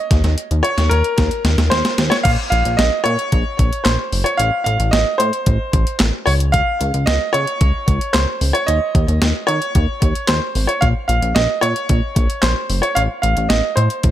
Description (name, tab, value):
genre	synth-pop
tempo	112 BPM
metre	4/4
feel	straight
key	Bb minor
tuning	A4 = 440 Hz
part	clear baby grand piano	melody	0.0-14.1 s	Bb4 to F5	-19 LUFS	equal	none
part	chorused synth bass	bass	0.1-14.1 s	Gb1 to Eb3	-17 LUFS	equal	none
part	clean 12-bit digital drum machine	drums	0.1-14.1 s	crash cymbal, handclaps, hi-hat, kick drum, snare drum	-18 LUFS	equal	overdrive
room	light reverb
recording	none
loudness	-14 LUFS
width	side -12 dB against mid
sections	0.0-2.3 A section; 2.3-14.1 B section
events	drum fill 0.1-2.3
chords	0.1 Eb5; 2.3 Bbm; 4.4 Am; 6.3 Db; 8.7 Absus4 (rootless); 10.8 Bbm; 13.0 Adim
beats	| 0.11 0.65 1.18 1.72 | 2.25 2.79 3.32 3.86 | 4.39 4.93 5.47 6.00 | 6.54 7.07 7.61 8.14 | 8.68 9.22 9.75 10.29 | 10.82 11.36 11.89 12.43 | 12.97 13.50 14.04